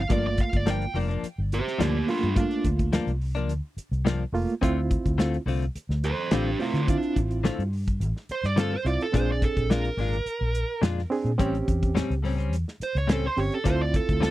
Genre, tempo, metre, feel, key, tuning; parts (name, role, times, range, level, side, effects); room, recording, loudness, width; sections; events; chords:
straight-eighth soul blues; 106 BPM; 4/4; straight; D minor; A4 = 440 Hz
dark smooth lead guitar; melody; 0.0-2.6, 6.0-14.3 s; A3 to G5; -29 LUFS; right 3 dB; overdrive
vintage muted fingered electric bass; bass; 0.0-14.3 s; F1 to D3; -27 LUFS; equal
bright reed electric piano; accompaniment; 0.1-14.3 s; A3 to Ab4; -29 LUFS; right 4 dB; fast tremolo
direct-recorded clean electric guitar; stabs; 0.1-14.3 s; G2 to A4; -29 LUFS; left 6 dB; wide subtle chorus
warm soul drum kit; drums; 0.1-14.3 s; hi-hat, kick drum, snare drum; -26 LUFS; equal
little or no reverb; dry, close 1970s-style studio recording; -23 LUFS; side -16 dB against mid
0.0-14.3 A section
0.1 Gm7; 4.6 Dm7; 9.1 Bb7; 11.4 A7#9; 13.7 Dm7